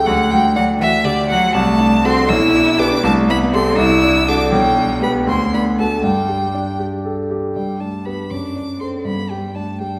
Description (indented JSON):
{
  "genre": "quick classical-period movement for piano trio",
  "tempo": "80 BPM (dotted quarters)",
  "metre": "6/8",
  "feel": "straight",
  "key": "G major",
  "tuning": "A4 = 437 Hz",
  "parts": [
    { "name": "rich violin", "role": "melody", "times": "0.0-10.0 s", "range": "D5 to E6", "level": "-22 LUFS", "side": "equal", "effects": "none" },
    { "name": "warm grand piano", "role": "accompaniment", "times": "0.0-10.0 s", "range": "B1 to C5", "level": "-20 LUFS", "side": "equal", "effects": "none" },
    { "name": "warm cello", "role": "second line", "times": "0.1-10.0 s", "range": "D3 to E4", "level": "-22 LUFS", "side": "equal", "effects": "none" }
  ],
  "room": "wet recital hall reverb, RT60 1.7 s",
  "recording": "recorded in a church or concert hall",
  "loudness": "-17 LUFS",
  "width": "mono",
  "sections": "0.0-7.6 A section; 7.6-10.0 A section",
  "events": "none",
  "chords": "0.1 D; 1.6 D7/C; 2.3 G/B; 3.0 Am7/C; 3.8 D7/C; 4.5 G/B; 5.3 D; 6.0 G5; 7.6 G; 8.3 D7/F#; 9.1 G5"
}